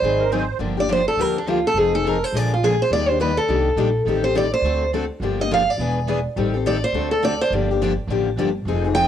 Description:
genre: acoustic string swing (jazz manouche)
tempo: 209 BPM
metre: 4/4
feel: swing 59% on 8ths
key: G minor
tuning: A4 = 440 Hz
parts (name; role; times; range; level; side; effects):
- picked steel-string acoustic guitar; melody; 0.0-9.1 s; D4 to G5; -20 LUFS; right 1 dB; cassette tape
- picked steel-string acoustic guitar; accompaniment; 0.0-9.1 s; D3 to A4; -24 LUFS; left 9 dB; cassette tape
- picked steel-string acoustic guitar; accompaniment; 0.0-9.1 s; D3 to B4; -29 LUFS; right 8 dB; cassette tape
- upright bass; bass; 0.0-9.1 s; E1 to Eb2; -25 LUFS; right 1 dB; none
- musette accordion; second line; 0.2-0.6 s; Bb4 to C5; -26 LUFS; right 10 dB; cassette tape
room: moderate studio reverb, RT60 0.6 s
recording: home recording on cassette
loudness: -18 LUFS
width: side -9 dB against mid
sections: 0.6-9.1 A section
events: steel-string acoustic guitar solo 0.6-9.1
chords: 0.0 Ab7; 0.6 Gm7; 1.8 Fm7; 2.3 Bb7; 2.9 Ebmaj7; 4.1 Am7b5; 4.6 D7; 5.2 Gm7; 5.8 E7; 6.4 Am7b5; 6.9 D7; 7.5 Gm7

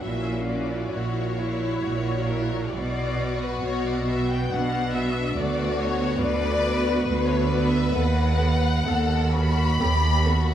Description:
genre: classical, slow romantic movement for string orchestra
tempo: 68 BPM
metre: 3/4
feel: uneven beats, rubato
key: B minor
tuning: A4 = 442 Hz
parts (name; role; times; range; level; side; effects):
- rich studio violin section; melody; 0.0-10.5 s; B4 to B5; -29 LUFS; left 3 dB; none
- clear studio violin section; second line; 0.0-10.5 s; C#4 to D5; -30 LUFS; left 5 dB; none
- clear symphonic viola section; accompaniment; 0.0-10.3 s; B3 to A4; -29 LUFS; right 1 dB; none
- clear studio cello section; bass; 0.0-10.5 s; D2 to B2; -27 LUFS; right 2 dB; none
- rich studio double bass section; bass; 0.0-10.5 s; A#1 to D#2; -27 LUFS; right 2 dB; none
room: moderate concert hall reverb, RT60 2.4 s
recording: none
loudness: -21 LUFS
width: side -10 dB against mid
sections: 0.0-10.5 A section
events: none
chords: 0.0 F#7/A#; 2.7 Bm; 5.4 Bm/D; 7.9 B7/D#

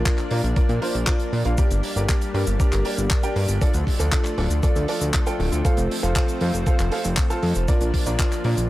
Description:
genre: italo disco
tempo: 118 BPM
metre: 4/4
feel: straight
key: unclear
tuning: A4 = 440 Hz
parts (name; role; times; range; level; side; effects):
- lush unison pad; sustained chords; 0.0-8.7 s; F3 to D4; -29 LUFS; equal; chorus, shimmer reverb
- bright baby grand piano; stabs; 0.0-8.6 s; D4 to A5; -28 LUFS; right 1 dB; analog delay, shimmer reverb
- fat analog bass; bass; 0.0-8.7 s; D1 to Bb2; -22 LUFS; equal; tube saturation
- damped 70s drum kit; drums; 0.1-8.7 s; cabasa, handclaps, hi-hat; -29 LUFS; equal; none
- electronic kick drum; drums; 0.1-8.3 s; none; -21 LUFS; equal; none
room: studio reverb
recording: dry, gritty hardware recording, transformer saturation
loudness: -19 LUFS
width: side -16 dB against mid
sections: 0.0-8.7 A section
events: none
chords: 0.0 Bb; 1.6 Gm; 3.6 Dm; 5.7 F; 7.7 Bb

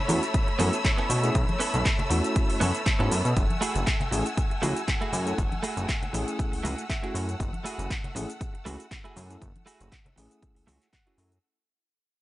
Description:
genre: nu-disco, nu disco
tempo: 119 BPM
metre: 4/4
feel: swing 54% on 16ths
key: F# minor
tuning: A4 = 440 Hz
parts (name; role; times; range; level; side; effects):
- warm symphonic violin section; sustained chords; 0.0-11.4 s; A3 to E6; -32 LUFS; left 1 dB; sidechain pumping
- bell-like tine electric piano; accompaniment; 0.1-11.3 s; A3 to A4; -33 LUFS; equal; sidechain pumping
- direct-recorded clean electric guitar; riff; 0.1-11.4 s; A3 to F#5; -33 LUFS; right 3 dB; analog chorus
- chorused synth bass; bass; 0.1-11.4 s; F#1 to B2; -28 LUFS; equal; none
- house drum kit; drums; 0.1-11.4 s; handclaps, hi-hat, shaker; -33 LUFS; equal; none
- maracas and congas; percussion; 0.1-11.4 s; none; -36 LUFS; left 1 dB; none
- electronic kick drum; drums; 0.3-11.0 s; none; -28 LUFS; equal; none
room: digital ambience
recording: dry, gritty hardware recording, transformer saturation, nothing above 10.5 kHz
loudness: -24 LUFS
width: side -16 dB against mid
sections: 0.0-11.4 A section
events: drop 0.0-11.4; fade-out 3.4-11.4; clean electric guitar fill 6.4-7.4, 10.4-11.4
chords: 0.0 B9sus4; 3.4 F#m9

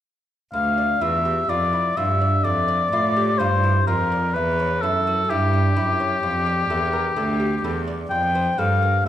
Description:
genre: classical, baroque-style sonata movement with continuo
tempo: 63 BPM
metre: 4/4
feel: straight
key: D minor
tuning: A4 = 440 Hz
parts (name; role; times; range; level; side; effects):
- mellow oboe; melody; 0.5-9.1 s; G4 to G5; -21 LUFS; left 3 dB; none
- lute; accompaniment; 0.5-9.1 s; D2 to D5; -28 LUFS; right 1 dB; none
- clear cello; bass; 0.5-9.1 s; D2 to A2; -23 LUFS; right 2 dB; none
room: wet recital hall reverb, RT60 1.4 s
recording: minimal, uncompressed stereo recording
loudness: -18 LUFS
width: side -11 dB against mid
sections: 0.5-9.1 A section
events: none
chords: 0.5 Dm; 4.3 C#dim/E; 6.2 Dm; 8.1 F

